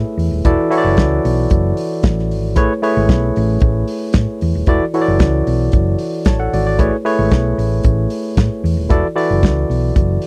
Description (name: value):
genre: disco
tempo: 114 BPM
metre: 4/4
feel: straight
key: A major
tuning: A4 = 440 Hz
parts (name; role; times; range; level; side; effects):
- barky tine electric piano; accompaniment; 0.0-10.3 s; E3 to A5; -20 LUFS; equal; none
- hollow-body short-scale fingered electric bass; bass; 0.0-10.2 s; D#1 to A2; -19 LUFS; equal; none
- warm soul drum kit; drums; 0.2-10.3 s; hi-hat, kick drum, snare drum; -16 LUFS; equal; none
room: little or no reverb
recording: dry, close 1970s-style studio recording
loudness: -16 LUFS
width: mono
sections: 0.0-10.3 A section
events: none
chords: 0.4 E9sus4; 2.6 Amaj7; 4.7 E9sus4; 6.8 Amaj7; 8.9 E9sus4